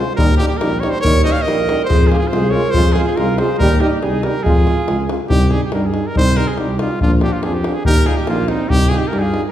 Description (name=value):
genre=balkan folk, Balkan brass band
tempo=141 BPM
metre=2/4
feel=straight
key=F minor, C minor from 5.3 s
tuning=A4 = 439 Hz
part: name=clear trumpet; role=melody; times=0.0-9.5 s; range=Eb4 to F5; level=-21 LUFS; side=equal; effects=none
part: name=clear euphonium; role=accompaniment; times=0.0-9.4 s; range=F3 to Ab3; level=-26 LUFS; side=right 3 dB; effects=none
part: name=warm trombone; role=accompaniment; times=0.0-9.4 s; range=D4 to F4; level=-24 LUFS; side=left 2 dB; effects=none
part: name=dark tuba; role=bass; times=0.2-9.4 s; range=Bb1 to G2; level=-19 LUFS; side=right 1 dB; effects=none
part: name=davul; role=percussion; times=0.2-9.5 s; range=none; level=-18 LUFS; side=left 1 dB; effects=none
part: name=clear alto saxophone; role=second line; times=1.0-5.1, 7.9-9.4 s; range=Bb3 to Db5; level=-21 LUFS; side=right 3 dB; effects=none
room=wet recital hall reverb, RT60 1.4 s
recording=heard from further back in the room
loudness=-13 LUFS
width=side -11 dB against mid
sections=0.0-5.3 A section; 5.3-9.5 B section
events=none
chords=0.2 Eb; 1.9 Fm; 3.6 Eb; 4.5 Fm; 5.3 Cm; 7.0 Bb; 7.9 Eb; 8.7 Cm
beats=| 0.18 0.61 | 1.04 1.46 | 1.89 2.32 | 2.75 3.17 | 3.60 4.03 | 4.45 4.88 | 5.30 5.73 | 6.16 6.58 | 7.00 7.43 | 7.85 8.28 | 8.70 9.12